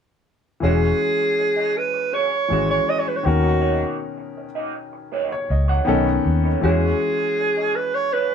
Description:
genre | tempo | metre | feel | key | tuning
lush 1970s-style soul | 80 BPM | 4/4 | straight | unclear | A4 = 441 Hz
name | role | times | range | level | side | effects
warm alto saxophone | melody | 0.6-8.3 s | F#4 to D#5 | -20 LUFS | right 2 dB | none
warm grand piano | accompaniment | 0.6-8.3 s | B2 to F#5 | -24 LUFS | left 4 dB | none
electric guitar through a small old amp | riff | 0.6-8.3 s | A#3 to D#5 | -28 LUFS | right 6 dB | wah
vintage muted fingered electric bass | bass | 0.6-6.9 s | E1 to E2 | -20 LUFS | equal | none
room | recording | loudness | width
light reverb | band playing live in one room | -18 LUFS | side -7 dB against mid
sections
0.6-8.3 A section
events
none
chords
0.6 E69; 3.3 Bmaj9/D#; 5.9 B9; 6.6 E69

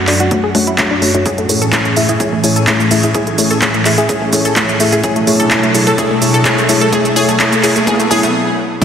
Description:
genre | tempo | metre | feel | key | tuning
progressive house | 127 BPM | 4/4 | straight | B dorian | A4 = 442 Hz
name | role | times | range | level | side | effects
airy breathy pad | sustained chords | 0.0-8.8 s | F#2 to A4 | -18 LUFS | equal | chorus, phaser, sidechain pumping
analog pluck | arpeggios | 0.0-8.8 s | A3 to A4 | -17 LUFS | left 1 dB | chorus, phaser, sidechain pumping, tape echo
deep mellow chord stab | stabs | 0.1-8.8 s | A3 to E5 | -16 LUFS | left 1 dB | chorus, sidechain pumping, tape echo
deep house drum kit | drums | 0.1-8.8 s | crash cymbal, handclaps, hi-hat, shaker | -16 LUFS | right 1 dB | high-pass filter on hats, high-pass filter on snare, high-pass filter on perc, high-pass filter on cymbals, high-pass filter on room
electronic kick drum | drums | 0.3-8.8 s | none | -22 LUFS | equal | high-pass filter on kick
riser and downlifter | sound effects | 4.4-8.8 s | none | -23 LUFS | right 1 dB | none
room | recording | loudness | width
wet lush hall reverb, RT60 2.2 s | dense, heavily limited modern master | -10 LUFS | side -8 dB against mid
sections
0.0-8.8 A section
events
build-up 0.0-8.8; filter sweep on synth arpeggio sound 0.0-8.8; filter sweep on synth stab 0.0-8.8; stop 8.3-8.8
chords
0.0 Dmaj7/F#; 1.3 Amaj7; 5.0 Bm7

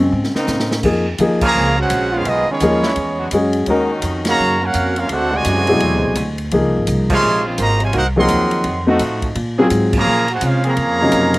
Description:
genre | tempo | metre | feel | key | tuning
jazz, big band swing | 169 BPM | 4/4 | swing 63% on 8ths | Bb minor | A4 = 440 Hz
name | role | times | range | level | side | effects
warm baby grand piano | accompaniment | 0.0-11.4 s | Cb3 to Bb4 | -16 LUFS | left 1 dB | none
upright bass | bass | 0.0-11.4 s | Ab1 to C3 | -21 LUFS | equal | none
swinging big-band drum kit | drums | 0.2-11.4 s | crash cymbal, hi-hat, kick drum, ride cymbal, snare drum | -26 LUFS | equal | none
brilliant trombone section | sustained chords | 0.3-10.7 s | Db3 to Bb4 | -24 LUFS | equal | none
clear trumpet section | melody | 1.4-11.4 s | Cb4 to C6 | -19 LUFS | right 1 dB | slapback echo
clear trombone section | second line | 1.4-11.4 s | A2 to Gb4 | -20 LUFS | right 2 dB | none
room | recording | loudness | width
little or no reverb | recorded outdoors, with no room sound | -14 LUFS | side -19 dB against mid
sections
0.8-11.4 A section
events
drum fill 0.1-0.8; band accent 1.4, 4.2, 7.1, 9.9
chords
0.0 Bbm9; 2.3 Fm7b5; 3.0 E9; 3.7 Ebm9; 5.1 D7#11; 6.5 Dbmaj7; 7.9 Cm7b5; 8.7 F7b9; 9.4 Bbm9

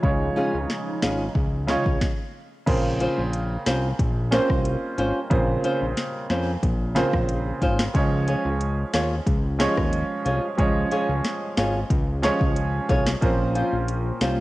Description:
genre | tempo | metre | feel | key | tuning
dancehall | 91 BPM | 4/4 | straight | unclear | A4 = 440 Hz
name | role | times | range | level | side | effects
warm baby grand piano | accompaniment | 0.0-14.4 s | Db3 to Db5 | -26 LUFS | right 2 dB | sidechain pumping, cassette tape
warm analog pad | sustained chords | 0.0-2.0, 13.2-14.4 s | Bb2 to C5 | -34 LUFS | equal | chorus, sidechain pumping, cassette tape
fat analog bass | bass | 0.0-14.4 s | Ab1 to F2 | -26 LUFS | equal | none
afro-pop drum kit | drums | 0.0-14.4 s | crash cymbal, hi-hat, kick drum, rim click, snare drum | -25 LUFS | equal | vintage 12-bit sampler grit, cassette tape
flamenco guitar | arpeggios | 0.4-14.4 s | Db4 to Db5 | -27 LUFS | left 1 dB | cassette tape
room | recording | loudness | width
little or no reverb | home recording on cassette | -21 LUFS | side -18 dB against mid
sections
0.0-2.7 A section; 2.7-14.4 B section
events
stop 2.0-2.7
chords
0.0 Db; 2.7 Bbmadd9; 7.9 Db; 13.2 Bbmadd9

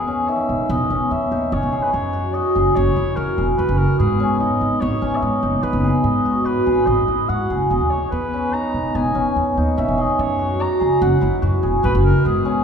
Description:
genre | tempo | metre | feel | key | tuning
contemporary instrumental, chamber music in an uneven meter | 146 BPM | 5/4 | straight | G# minor | A4 = 440 Hz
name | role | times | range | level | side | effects
warm oboe | melody | 0.0-12.6 s | G#4 to A#5 | -25 LUFS | left 1 dB | none
cimbalom | arpeggios | 0.0-12.6 s | D#3 to G#4 | -19 LUFS | equal | none
upright bass | bass | 0.0-12.6 s | E1 to G#2 | -21 LUFS | equal | none
room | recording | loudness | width
wet scoring stage reverb, RT60 1.8 s | heard from further back in the room | -16 LUFS | side -6 dB against mid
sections
0.0-12.6 A section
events
none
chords
0.0 Emaj7; 3.6 G#m7; 7.7 Emaj7; 11.8 G#m7

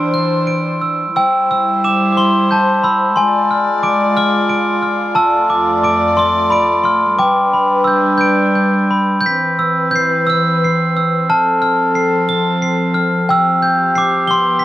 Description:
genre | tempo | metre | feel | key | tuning
children's music, lullaby | 60 BPM (dotted quarters) | 6/8 | rubato | C major | A4 = 440 Hz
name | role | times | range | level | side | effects
glockenspiel with hard plastic mallets | melody | 0.0-14.6 s | G5 to C8 | -13 LUFS | equal | none
dark chamber string section | sustained chords | 0.0-14.6 s | F2 to D5 | -17 LUFS | equal | none
room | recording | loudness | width
light reverb | dry, close 1970s-style studio recording | -12 LUFS | side -14 dB against mid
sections
0.0-1.2 A section; 1.2-14.6 B section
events
none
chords
0.0 Cadd9; 1.2 C; 3.2 Fm6; 5.2 Dm/F; 7.2 G; 9.2 Cmaj7; 11.3 F; 13.3 G7sus4

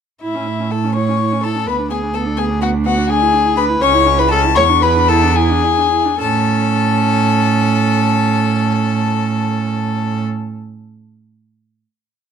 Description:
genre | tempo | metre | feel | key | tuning
quick classical-period movement for string quartet | 70-85 BPM (dotted quarters) | 6/8 | rubato | A major | A4 = 440 Hz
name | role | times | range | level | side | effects
warm violin | melody | 0.2-10.2 s | E5 to C#6 | -18 LUFS | left 11 dB | none
warm violin | second line | 0.2-10.2 s | E4 to C#5 | -20 LUFS | left 2 dB | none
warm viola | accompaniment | 0.2-10.2 s | B3 to E4 | -21 LUFS | right 6 dB | none
rich cello | bass | 0.2-10.2 s | C#2 to A2 | -17 LUFS | right 4 dB | none
room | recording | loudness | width
light reverb | dark, warm production | -13 LUFS | side -7 dB against mid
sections
0.2-6.2 A section; 6.2-9.5 final chord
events
slowing down 2.4-6.2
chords
0.2 A; 1.7 Bm/D; 3.1 E7/D; 3.8 Aadd9/C#; 4.6 E7; 6.2 A

